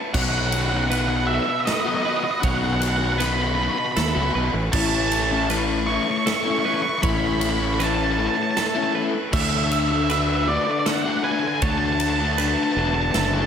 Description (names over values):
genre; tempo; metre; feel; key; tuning
post-rock; 78 BPM; 3/4; straight; A major; A4 = 441 Hz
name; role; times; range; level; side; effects
clear symphonic string section; sustained chords; 0.0-13.5 s; F#4 to C#6; -35 LUFS; equal; none
twelve-string electric guitar; arpeggios; 0.0-13.5 s; A4 to C#5; -32 LUFS; right 6 dB; slapback echo
octave-fuzz lead guitar; melody; 0.1-13.5 s; D5 to C#6; -24 LUFS; right 3 dB; distortion, slapback echo
raw garage guitar; riff; 0.1-13.5 s; A2 to F#4; -25 LUFS; left 7 dB; overdrive
fuzz fingered electric bass; bass; 0.1-13.5 s; E1 to D#2; -25 LUFS; right 1 dB; overdrive
big rock drum kit; drums; 0.1-13.3 s; crash cymbal, kick drum, ride cymbal, snare drum; -27 LUFS; equal; none
room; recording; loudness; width
moderate lush hall reverb, RT60 2.5 s; big arena sound; -19 LUFS; side -8 dB against mid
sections
0.0-13.5 A section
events
none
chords
0.1 B; 4.7 A; 9.3 D